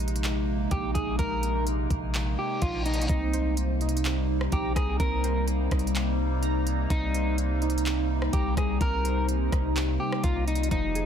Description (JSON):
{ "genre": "hip hop, atmospheric cloud-rap", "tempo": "126 BPM", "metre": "4/4", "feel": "half-time", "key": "C minor", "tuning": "A4 = 440 Hz", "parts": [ { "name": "warbly tape-like pad", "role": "sustained chords", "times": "0.0-11.1 s", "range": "C3 to Eb4", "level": "-30 LUFS", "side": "equal", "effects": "chorus, built-in reverb, phaser" }, { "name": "long sustained 808-style bass", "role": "bass", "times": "0.0-11.1 s", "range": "F1 to C2", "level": "-28 LUFS", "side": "equal", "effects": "none" }, { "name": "trap drum kit", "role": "drums", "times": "0.0-11.1 s", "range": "handclaps, hi-hat, kick drum, rim click", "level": "-31 LUFS", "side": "equal", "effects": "overdrive" }, { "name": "electric guitar at the edge of break-up", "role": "melody", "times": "0.7-11.1 s", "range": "Eb4 to Bb4", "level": "-32 LUFS", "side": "equal", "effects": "tape echo" }, { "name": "reverse cymbal and impact", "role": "sound effects", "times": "2.4-5.0 s", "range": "none", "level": "-39 LUFS", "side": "left 2 dB", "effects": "none" }, { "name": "warbly lo-fi synth keys", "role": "arpeggios", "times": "3.1-11.1 s", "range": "F3 to Bb5", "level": "-36 LUFS", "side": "right 4 dB", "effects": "chorus, tape echo" } ], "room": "little or no reverb", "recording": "dense, heavily limited modern master", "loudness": "-24 LUFS", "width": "side -8 dB against mid", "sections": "0.0-3.1 A section; 3.1-11.1 B section", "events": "reverse cymbal 2.4-3.1; impact 3.1-5.0", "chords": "0.0 Bb9sus4; 3.1 Cm7", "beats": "0.24 0.71 | 1.19 1.67 2.14 2.62 | 3.09 3.57 4.05 4.52 | 5.00 5.47 5.95 6.43 | 6.90 7.38 7.86 8.33 | 8.81 9.29 9.76 10.24 | 10.71" }